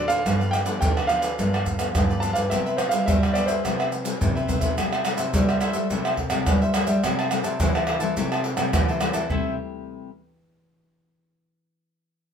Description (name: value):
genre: samba and choro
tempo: 106 BPM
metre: 4/4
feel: straight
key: C major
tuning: A4 = 440 Hz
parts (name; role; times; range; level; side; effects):
- warm concert grand piano; melody; 0.0-4.4 s; C5 to A5; -26 LUFS; right 2 dB; none
- cavaquinho; accompaniment; 0.0-9.5 s; E4 to A5; -30 LUFS; left 2 dB; none
- nylon-string guitar; accompaniment; 0.0-10.1 s; G2 to F#4; -30 LUFS; left 7 dB; none
- nylon-string guitar; bass; 0.0-9.6 s; G2 to G3; -26 LUFS; right 1 dB; none
- maracas, pandeiro, surdo and tamborim; percussion; 0.1-9.4 s; none; -24 LUFS; right 1 dB; none
room: wet studio ambience, RT60 0.5 s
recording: band playing live in one room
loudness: -20 LUFS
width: side -7 dB against mid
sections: 0.0-4.8 A section; 4.8-9.3 B section; 9.3-11.6 C section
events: drum fill 3.6-4.8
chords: 0.3 G7; 2.5 Cmaj7; 4.8 C6; 7.0 Am7/C